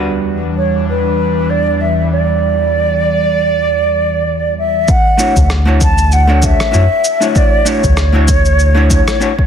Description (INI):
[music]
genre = sunset chillout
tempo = 97 BPM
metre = 4/4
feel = swing 56% on 16ths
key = D major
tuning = A4 = 438 Hz
[part]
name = vintage hollow-body jazz guitar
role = accompaniment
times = 0.0-9.3 s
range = G3 to C#5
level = -18 LUFS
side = moving between left 5 dB and right 3 dB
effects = auto-pan, ping-pong delay
[part]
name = airy breathy pad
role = sustained chords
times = 0.0-4.9 s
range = E2 to D5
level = -17 LUFS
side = equal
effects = chorus
[part]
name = mellow concert flute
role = melody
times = 0.6-9.5 s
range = B4 to A5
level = -15 LUFS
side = right 2 dB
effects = tape echo
[part]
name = electronic kick drum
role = drums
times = 4.9-9.5 s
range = none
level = -14 LUFS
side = equal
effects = studio reverb
[part]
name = electronic shaker and rim click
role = drums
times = 4.9-9.4 s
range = none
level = -21 LUFS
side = left 1 dB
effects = low-pass filter on perc, studio reverb, soft clipping on snare, low-pass filter on snare
[part]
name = round analog bass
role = bass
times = 5.4-9.0 s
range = D2 to F#2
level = -11 LUFS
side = equal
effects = none
[sound]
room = light reverb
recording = dense, heavily limited modern master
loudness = -10 LUFS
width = side -8 dB against mid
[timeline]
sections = 0.0-4.9 A section; 4.9-9.5 B section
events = none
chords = 0.0 Em7; 4.9 Dmaj7